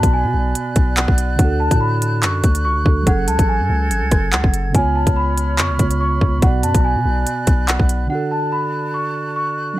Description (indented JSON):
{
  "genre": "hip hop, drill",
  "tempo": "143 BPM",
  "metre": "4/4",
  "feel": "half-time",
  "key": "unclear",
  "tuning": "A4 = 443 Hz",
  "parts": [
    { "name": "large celesta", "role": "melody", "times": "0.0-9.8 s", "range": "F#5 to C#6", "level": "-22 LUFS", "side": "equal", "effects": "tape echo" },
    { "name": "mellow tine electric piano", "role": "accompaniment", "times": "0.0-9.8 s", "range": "B2 to D5", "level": "-23 LUFS", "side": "right 3 dB", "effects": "none" },
    { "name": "breathy small flute group", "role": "sustained chords", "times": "0.0-9.8 s", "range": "A4 to G#6", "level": "-27 LUFS", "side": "right 2 dB", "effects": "none" },
    { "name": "long sustained 808-style bass", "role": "bass", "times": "0.0-8.1 s", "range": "F#1 to B2", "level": "-19 LUFS", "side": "equal", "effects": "none" },
    { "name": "drill drum kit", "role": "drums", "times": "0.0-8.0 s", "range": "handclaps, hi-hat, kick drum, rim click", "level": "-16 LUFS", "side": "equal", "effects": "none" }
  ],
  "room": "little or no reverb",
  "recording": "none",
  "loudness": "-15 LUFS",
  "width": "side -15 dB against mid",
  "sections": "0.0-8.1 A section; 8.1-9.8 B section",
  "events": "none",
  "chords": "0.0 Bm; 1.4 D; 3.1 F#madd9; 4.7 C#7; 6.4 Bm; 8.1 D"
}